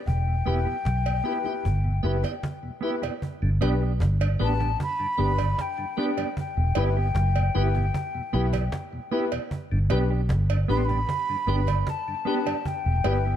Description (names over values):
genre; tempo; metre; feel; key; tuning
roots reggae; 76 BPM; 4/4; straight; G major; A4 = 439 Hz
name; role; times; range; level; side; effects
breathy mellow jazz flute; melody; 0.0-13.4 s; G5 to C6; -30 LUFS; left 2 dB; tape echo
vintage muted fingered electric bass; bass; 0.1-13.4 s; E1 to B1; -23 LUFS; equal; none
cajon; drums; 0.1-13.3 s; none; -32 LUFS; right 1 dB; none
tonewheel organ; accompaniment; 0.3-13.1 s; E2 to G4; -37 LUFS; left 1 dB; slow rotary speaker
mellow electric guitar; accompaniment; 0.5-13.3 s; B3 to G4; -33 LUFS; right 6 dB; tremolo, tape echo
dark baby grand piano; stabs; 0.5-13.2 s; B3 to B4; -32 LUFS; left 5 dB; none
cowbell; percussion; 1.1-13.2 s; none; -35 LUFS; right 11 dB; none
room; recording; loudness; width
light reverb; dark, warm production; -23 LUFS; side -10 dB against mid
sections
0.0-3.2 A section; 3.2-13.4 B section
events
none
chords
0.1 Em; 3.2 G; 6.4 Em; 9.5 G; 12.7 Em